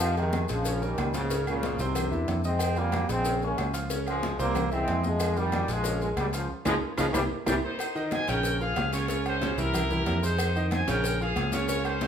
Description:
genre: latin, salsa.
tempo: 185 BPM.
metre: 4/4.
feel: straight.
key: unclear.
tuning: A4 = 440 Hz.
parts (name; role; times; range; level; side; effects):
bright trombone section; melody; 0.0-7.5 s; G2 to Db4; -30 LUFS; equal; none.
clear grand piano; accompaniment; 0.0-12.1 s; C3 to Eb6; -32 LUFS; right 1 dB; none.
fingered electric bass; bass; 0.0-12.1 s; Bb1 to F2; -30 LUFS; equal; none.
agogo bells and timbales; percussion; 0.0-12.1 s; none; -36 LUFS; right 4 dB; none.
claves; percussion; 0.0-12.0 s; none; -44 LUFS; right 2 dB; none.
congas; percussion; 0.0-12.1 s; none; -37 LUFS; left 2 dB; none.
cowbell; percussion; 0.0-12.1 s; none; -37 LUFS; left 5 dB; none.
maracas; percussion; 0.0-12.1 s; none; -41 LUFS; left 4 dB; none.
bright trumpet section; melody; 7.6-12.1 s; Eb4 to Ab5; -31 LUFS; equal; none.
room: moderate large studio reverb, RT60 0.9 s.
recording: band playing live in one room.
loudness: -25 LUFS.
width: side -8 dB against mid.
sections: 0.0-7.8 A section; 7.8-12.1 B section.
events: band accent 6.5-7.8; drum fill 6.8-7.8.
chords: 0.0 Fm7; 0.7 Bbm7; 1.3 Dbmaj7; 2.0 C; 2.6 Fm7; 3.2 Bbm7; 3.9 Dbmaj7; 4.5 C; 5.2 Fm7; 5.8 Bbm7; 6.5 Db; 7.1 C; 7.8 Bbm11; 8.4 Bbm7; 9.1 Dbmaj7; 9.7 C7; 10.4 Fm7; 11.0 Bbm7.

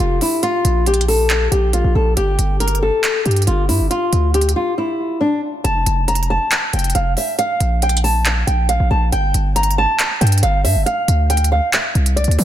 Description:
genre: hip hop, trap.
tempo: 138 BPM.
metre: 4/4.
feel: half-time.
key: F major.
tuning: A4 = 440 Hz.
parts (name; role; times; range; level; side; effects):
flamenco guitar; melody; 0.0-12.4 s; D4 to Bb5; -18 LUFS; left 1 dB; ping-pong delay.
hard-hitting 808-style bass; bass; 0.0-12.4 s; F1 to D3; -16 LUFS; equal; none.
trap drum kit; drums; 0.2-12.4 s; handclaps, hi-hat; -20 LUFS; right 1 dB; overdrive.
room: light reverb, digital ambience.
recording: dense, heavily limited modern master.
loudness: -14 LUFS.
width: side -11 dB against mid.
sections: 0.0-5.6 A section; 5.6-12.4 B section.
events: break 4.8-5.6.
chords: 0.4 Bb5; 2.2 Gsus2; 3.9 Dm; 5.6 F; 7.4 Bb5; 9.1 Gsus2; 10.9 Dm7.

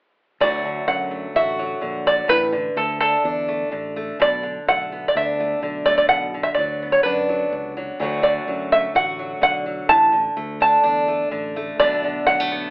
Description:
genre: indie folk with a building arrangement.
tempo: 126 BPM.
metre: 4/4.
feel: straight.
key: D major.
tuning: A4 = 440 Hz.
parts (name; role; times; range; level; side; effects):
open-back banjo; melody; 0.4-12.7 s; A4 to A5; -18 LUFS; right 1 dB; none.
fingerpicked steel-string acoustic guitar; accompaniment; 0.4-12.7 s; D2 to F#4; -24 LUFS; equal; none.
fingered electric bass; bass; 0.4-12.7 s; A1 to F#2; -35 LUFS; equal; none.
room: wet studio reverb, RT60 0.7 s.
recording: band playing live in one room, telephone sound.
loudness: -18 LUFS.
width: side -25 dB against mid.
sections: 0.4-12.7 A section.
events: none.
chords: 0.4 D; 2.3 Asus4; 4.2 Bm7; 6.1 Bm; 8.0 D; 9.9 Asus4; 11.8 Bm7.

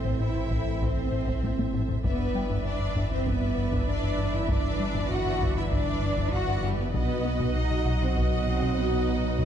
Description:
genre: cinematic, hybrid orchestral and electronic film score.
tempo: 98 BPM.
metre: 4/4.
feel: straight.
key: E minor.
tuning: A4 = 440 Hz.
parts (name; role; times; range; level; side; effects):
rich symphonic violin section; melody; 0.0-9.4 s; G4 to F#5; -36 LUFS; left 6 dB; none.
clear symphonic violin section; second line; 0.0-9.4 s; D#5 to F#5; -38 LUFS; left 2 dB; none.
rich symphonic viola section; accompaniment; 0.0-9.4 s; F#4 to D#5; -36 LUFS; right 1 dB; none.
bright trombone section; sustained chords; 0.0-9.4 s; E3 to D#4; -35 LUFS; right 4 dB; none.
rubbery square bass; riff; 0.0-9.4 s; G2 to B3; -31 LUFS; left 3 dB; none.
rich symphonic cello section; bass; 0.0-9.4 s; G3 to F#4; -32 LUFS; right 4 dB; none.
rich symphonic double bass section; bass; 0.0-9.4 s; G1 to B1; -34 LUFS; right 2 dB; none.
sub bass with octave; bass; 0.0-9.4 s; G1 to B1; -33 LUFS; equal; none.
warm baby grand piano; texture; 0.0-9.4 s; D#5 to D6; -46 LUFS; left 3 dB; none.
taiko ensemble; drums; 0.1-9.4 s; none; -32 LUFS; equal; none.
room: moderate scoring stage reverb, RT60 1.5 s.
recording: dark, warm production.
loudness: -24 LUFS.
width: side -9 dB against mid.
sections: 0.0-9.4 A section.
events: drum fill 1.4-2.0.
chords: 0.0 Am; 2.0 Em7/G; 6.9 B.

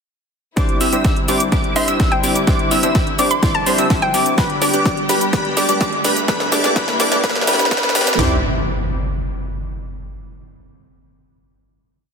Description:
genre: EDM, festival progressive house.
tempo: 126 BPM.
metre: 4/4.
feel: straight.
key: C major.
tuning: A4 = 435 Hz.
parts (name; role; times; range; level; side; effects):
warm grand piano; accompaniment; 0.6-8.4 s; G3 to C5; -25 LUFS; left 3 dB; sidechain pumping, dub echo.
dark studio string section; sustained chords; 0.6-8.4 s; C3 to G4; -28 LUFS; left 2 dB; sidechain pumping.
plucky unison lead; arpeggios; 0.6-8.4 s; B5 to E6; -22 LUFS; equal; ensemble chorus, sidechain pumping, dub echo.
supersaw stab; riff; 0.6-8.4 s; C4 to E5; -21 LUFS; right 1 dB; sidechain pumping, low-pass filter, dub echo.
saturated sub bass; bass; 0.6-8.4 s; G1 to A2; -31 LUFS; equal; none.
house drum kit; drums; 0.6-8.3 s; kick drum, snare drum, toms; -19 LUFS; equal; overdrive.
house drum kit; drums; 0.6-8.2 s; hi-hat, shaker, snare drum; -22 LUFS; equal; overdrive, high-pass filter on snare, high-pass filter on hats, high-pass filter on perc, high-pass filter on room.
riser and impact; sound effects; 2.8-10.1 s; none; -26 LUFS; right 1 dB; none.
hollow square pluck; melody; 1.8-4.4 s; E5 to C6; -22 LUFS; left 1 dB; chorus, dub echo.
room: moderate lush hall reverb, RT60 1.8 s.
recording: dense, heavily limited modern master, high-pass filter.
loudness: -14 LUFS.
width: side -6 dB against mid.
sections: 0.6-8.2 build; 8.2-10.1 final chord.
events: build-up 0.6-8.2; drum fill 0.6-8.2; filter sweep on supersaw synth 0.6-8.2; filter sweep 0.6-8.2; riser 2.8-8.2.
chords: 0.6 Cadd9; 4.4 G; 6.3 Am; 8.2 Cadd9.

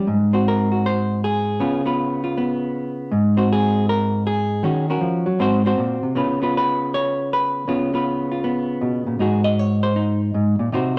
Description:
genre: solo jazz.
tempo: 158 BPM.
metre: 4/4.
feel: swing 66% on 8ths.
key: unclear.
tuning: A4 = 440 Hz.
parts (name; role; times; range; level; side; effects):
hollow-body jazz guitar; solo; 0.0-11.0 s; Ab2 to Eb5; -20 LUFS; equal; none.
room: wet studio reverb, RT60 0.9 s.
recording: none.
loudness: -20 LUFS.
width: mono.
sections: 0.1-11.0 A section.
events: hollow-body jazz guitar solo 0.1-11.0.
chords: 0.1 Ab7; 1.6 Db7; 3.1 Ab7; 4.6 Ebm7; 5.4 Ab7; 6.2 Db7; 9.2 Ab7.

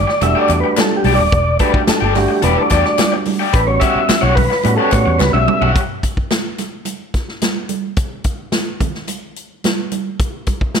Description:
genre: funk.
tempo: 108 BPM.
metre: 4/4.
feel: straight.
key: unclear.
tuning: A4 = 440 Hz.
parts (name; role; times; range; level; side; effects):
percussive tonewheel organ; melody; 0.0-5.7 s; G4 to E5; -17 LUFS; left 1 dB; fast rotary speaker.
overdriven tine electric piano; stabs; 0.0-5.7 s; G3 to F#4; -21 LUFS; right 4 dB; none.
vintage muted fingered electric bass; bass; 0.0-5.7 s; D#1 to A2; -18 LUFS; equal; none.
raw garage guitar; accompaniment; 0.1-5.8 s; G4 to G5; -20 LUFS; left 6 dB; overdrive.
swinging big-band drum kit; drums; 0.1-10.8 s; hi-hat, kick drum, snare drum, toms; -19 LUFS; left 1 dB; none.
congas; percussion; 0.2-10.8 s; none; -24 LUFS; right 9 dB; none.
group handclap; percussion; 0.5-5.3 s; none; -28 LUFS; left 6 dB; none.
room: light reverb.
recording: none.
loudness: -13 LUFS.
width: side -6 dB against mid.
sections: 0.0-5.8 A section; 5.8-10.8 B section.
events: tonewheel organ solo 0.0-5.8; drum fill 5.2-5.8.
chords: 0.0 Em11; 3.5 A13; 5.8 N.C..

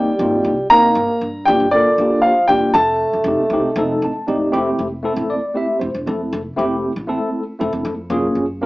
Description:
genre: jazz.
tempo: 235 BPM (eighths).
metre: 7/8.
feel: straight.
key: unclear.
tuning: A4 = 440 Hz.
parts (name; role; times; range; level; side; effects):
warm grand piano; melody; 0.0-4.2 s; D5 to Bb5; -14 LUFS; equal; none.
growling trombone; second line; 0.0-4.2 s; D3 to Bb3; -19 LUFS; right 1 dB; none.
tine electric piano; accompaniment; 0.0-8.7 s; A3 to A5; -19 LUFS; equal; medium stereo tremolo.
upright bass; bass; 0.0-8.7 s; E1 to G2; -28 LUFS; equal; none.
room: wet studio reverb, RT60 0.5 s.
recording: band playing live in one room, small speaker sound.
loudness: -15 LUFS.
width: side -20 dB against mid.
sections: 0.0-4.5 A section; 4.5-8.7 B section.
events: tine electric piano fill 3.8-4.5.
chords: 0.0 Abmaj9; 1.0 Gm7; 2.8 F9; 4.5 Fmaj9; 8.1 Gbmaj9.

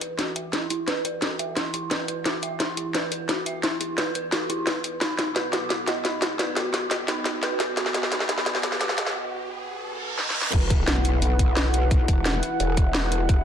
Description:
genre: dark technical drum and bass.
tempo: 174 BPM.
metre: 4/4.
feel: straight.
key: unclear.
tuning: A4 = 441 Hz.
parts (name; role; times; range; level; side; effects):
dark analog pad; sustained chords; 0.0-13.4 s; B3 to F#5; -33 LUFS; equal; chorus, sidechain pumping.
dark detuned synth bell; arpeggios; 0.0-9.0 s; D#4 to E5; -29 LUFS; right 2 dB; chorus, phaser, sidechain pumping, low-pass filter, tape echo.
drum and bass drum kit; drums; 0.0-13.4 s; crash cymbal, hi-hat, snare drum; -26 LUFS; left 1 dB; none.
riser, reverse cymbal and impact; sound effects; 8.3-11.9 s; none; -34 LUFS; right 1 dB; none.
growl bass; bass; 10.5-13.4 s; E1 to B1; -24 LUFS; equal; chorus, tube saturation.
electronic kick drum; drums; 10.5-13.4 s; none; -20 LUFS; equal; none.
room: moderate digital room reverb, RT60 1.4 s.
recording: dense, heavily limited modern master, high-pass filter, lossy compression artefacts.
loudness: -22 LUFS.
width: side -8 dB against mid.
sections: 0.0-10.5 A section; 10.5-13.4 B section.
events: build-up 0.0-10.5; drum fill 0.0-9.2, 10.2-10.5; filter sweep on analog synth pad 0.0-10.5; filter sweep on synth bell 0.0-10.5; riser 8.3-10.5; break 9.2-10.5; reverse cymbal 9.8-10.5; drop 10.5-13.4; impact 10.5-11.9.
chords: 0.0 E5; 5.0 B; 10.5 E5.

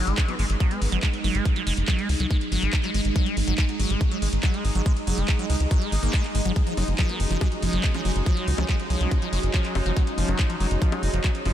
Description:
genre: psychedelic trance.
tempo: 141 BPM.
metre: 4/4.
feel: straight.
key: unclear.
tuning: A4 = 439 Hz.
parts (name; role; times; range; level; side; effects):
bubbling stepped-filter texture; sustained chords; 0.1-11.5 s; G#3 to D#4; -32 LUFS; right 2 dB; chorus, built-in reverb, sidechain pumping.
liquid acid bass; riff; 0.0-11.5 s; E#3 to A#3; -29 LUFS; moving between left 5 dB and right 4 dB; phaser, auto-pan, sidechain pumping, tape echo.
tight sequencer bass; bass; 0.0-11.5 s; F#1 to C#2; -24 LUFS; equal; none.
warbly tape-like pad; texture; 0.0-11.5 s; C#4 to D#5; -35 LUFS; right 2 dB; chorus, built-in reverb, sidechain pumping.
drum and bass drum kit; drums; 0.1-11.5 s; bongos, handclaps, hi-hat; -32 LUFS; left 1 dB; none.
electronic kick drum; drums; 0.2-11.3 s; none; -22 LUFS; equal; none.
formant-sweep wobble bass; second line; 0.3-1.0, 7.1-9.6 s; G#3 to C#4; -46 LUFS; equal; none.
room: light reverb, digital ambience.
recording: none.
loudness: -21 LUFS.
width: side -11 dB against mid.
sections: 0.0-11.5 A section.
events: none.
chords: 0.0 G#5; 6.6 F#5.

